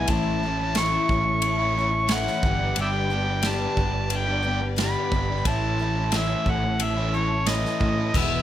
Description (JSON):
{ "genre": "folk rock and heartland rock", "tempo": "89 BPM", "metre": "4/4", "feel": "straight", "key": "unclear", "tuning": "A4 = 440 Hz", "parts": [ { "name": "overdriven harmonica", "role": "melody", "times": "0.0-8.4 s", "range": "C#5 to C#6", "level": "-26 LUFS", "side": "right 1 dB", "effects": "none" }, { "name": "picked twelve-string acoustic guitar", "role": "accompaniment", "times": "0.0-8.4 s", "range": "E2 to A4", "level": "-30 LUFS", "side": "left 6 dB", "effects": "none" }, { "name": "warm studio string section", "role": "sustained chords", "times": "0.0-8.4 s", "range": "B3 to D5", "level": "-36 LUFS", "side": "right 2 dB", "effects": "none" }, { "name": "overdriven electric guitar", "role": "riff", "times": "0.0-8.4 s", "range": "E2 to G4", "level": "-31 LUFS", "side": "equal", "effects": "none" }, { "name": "picked electric bass", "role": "bass", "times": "0.0-8.4 s", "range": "E1 to A2", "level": "-27 LUFS", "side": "right 1 dB", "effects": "none" }, { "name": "natural country drum kit", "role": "drums", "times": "0.1-8.3 s", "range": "crash cymbal, kick drum, ride cymbal, snare drum", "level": "-28 LUFS", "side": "equal", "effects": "none" } ], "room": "light reverb", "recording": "none", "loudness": "-21 LUFS", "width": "side -12 dB against mid", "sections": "0.0-8.4 A section", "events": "none", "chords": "0.1 A; 2.4 G; 5.5 A", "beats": "| 0.09 0.76 1.44 2.11 | 2.78 3.45 4.12 4.79 | 5.46 6.13 6.80 7.47 | 8.14" }